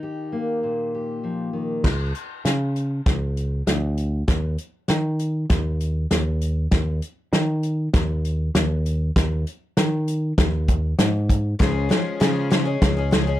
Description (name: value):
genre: indie folk with a building arrangement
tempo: 98 BPM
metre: 4/4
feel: straight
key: unclear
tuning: A4 = 440 Hz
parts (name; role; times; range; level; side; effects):
- bluegrass banjo; melody; 0.0-1.2 s; none; barely audible; none; none
- fingerpicked steel-string acoustic guitar; accompaniment; 0.0-1.9 s; Bb2 to G4; -25 LUFS; left 1 dB; none
- picked electric bass; bass; 1.8-13.4 s; Db2 to Eb3; -22 LUFS; equal; none
- natural country drum kit; drums; 1.8-13.3 s; crash cymbal, hi-hat, kick drum, snare drum; -21 LUFS; equal; none
- picked twelve-string acoustic guitar; accompaniment; 11.6-13.4 s; Db3 to Ab4; -26 LUFS; left 5 dB; none
room: little or no reverb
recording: none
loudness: -20 LUFS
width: side -14 dB against mid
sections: 0.0-1.8 A section; 1.8-13.4 B section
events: build-up 1.8-13.4; drum fill 1.8-13.4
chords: 0.0 Eb; 1.8 N.C.; 11.6 Db